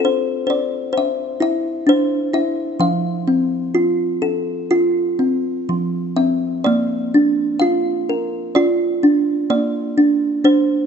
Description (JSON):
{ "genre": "children's music, lullaby", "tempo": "64 BPM", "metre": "4/4", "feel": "rubato", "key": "unclear", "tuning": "A4 = 440 Hz", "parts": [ { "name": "kalimba", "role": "solo", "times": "0.0-10.9 s", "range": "F3 to F5", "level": "-16 LUFS", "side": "equal", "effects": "none" } ], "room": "light reverb", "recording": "dark, warm production, nothing above 7.8 kHz", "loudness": "-16 LUFS", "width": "side -7 dB against mid", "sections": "0.0-6.7 A section; 6.7-10.9 B section", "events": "none", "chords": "0.0 F/C; 0.9 Cadd9; 2.8 F; 6.7 Bb" }